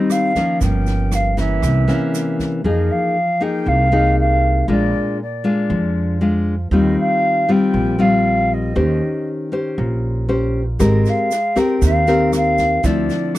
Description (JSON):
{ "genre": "bossa nova", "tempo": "118 BPM", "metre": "4/4", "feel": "straight", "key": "F minor", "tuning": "A4 = 438 Hz", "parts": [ { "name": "mellow concert flute", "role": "melody", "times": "0.0-13.4 s", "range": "D5 to G5", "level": "-20 LUFS", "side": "right 1 dB", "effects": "none" }, { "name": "nylon-string guitar", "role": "accompaniment", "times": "0.0-13.4 s", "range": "G2 to C5", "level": "-18 LUFS", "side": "left 2 dB", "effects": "none" }, { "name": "open jazz drum kit", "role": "drums", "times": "0.1-2.5, 10.8-13.4 s", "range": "kick drum, rim click, snare drum", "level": "-24 LUFS", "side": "right 1 dB", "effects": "none" }, { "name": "tube shaker", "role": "percussion", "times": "0.1-2.7, 10.8-13.4 s", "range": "none", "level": "-35 LUFS", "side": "right 29 dB", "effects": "none" }, { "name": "upright bass", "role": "bass", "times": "0.6-13.1 s", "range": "G1 to F2", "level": "-19 LUFS", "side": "right 1 dB", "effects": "none" } ], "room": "light reverb", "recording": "dry, close 1970s-style studio recording", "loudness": "-15 LUFS", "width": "side -15 dB against mid", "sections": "0.0-2.6 A section; 2.6-13.4 B section", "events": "none", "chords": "0.0 Abmaj7 (rootless); 0.6 Gm7b5; 1.6 C7b9; 2.6 Fm7; 4.7 Bb7; 6.7 Eb69; 8.8 Eb6; 10.8 Abmaj9; 12.8 Dm9", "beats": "0.10 | 0.61 1.12 1.63 2.14 | 2.65 3.15 3.66 4.17 | 4.68 5.19 5.70 6.21 | 6.72 7.23 7.74 8.25 | 8.76 9.27 9.78 10.29 | 10.80 11.31 11.82 12.33 | 12.84 13.35" }